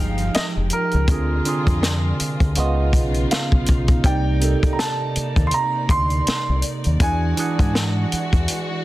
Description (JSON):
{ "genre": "R&B, neo-soul", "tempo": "81 BPM", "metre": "4/4", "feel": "swing 58% on 16ths", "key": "unclear", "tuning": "A4 = 440 Hz", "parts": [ { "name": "clear baby grand piano", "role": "melody", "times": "0.0-7.7 s", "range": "Bb4 to C6", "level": "-26 LUFS", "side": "right 1 dB", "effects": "tape echo" }, { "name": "barky tine electric piano", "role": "accompaniment", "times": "0.0-8.8 s", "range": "C3 to F#5", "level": "-25 LUFS", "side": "right 4 dB", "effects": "phaser" }, { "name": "warm studio string section", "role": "sustained chords", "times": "0.0-8.8 s", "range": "C3 to G5", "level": "-31 LUFS", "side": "left 2 dB", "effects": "none" }, { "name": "deep dub fingered electric bass", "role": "bass", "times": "0.0-8.5 s", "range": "F1 to G#2", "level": "-21 LUFS", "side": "equal", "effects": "none" }, { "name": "compact cocktail drum kit", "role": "drums", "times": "0.2-8.7 s", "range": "hi-hat, kick drum, snare drum", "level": "-20 LUFS", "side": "equal", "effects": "none" } ], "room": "light reverb", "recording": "dense, heavily limited modern master", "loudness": "-17 LUFS", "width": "side -16 dB against mid", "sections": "0.0-8.8 A section", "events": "none", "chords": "0.0 Fm9; 1.1 Dm7b5; 2.6 Db9; 4.0 Cm9; 7.0 E9", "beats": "0.34 | 1.08 1.82 2.56 3.30 | 4.04 4.78 5.52 6.26 | 7.01 7.75 8.49" }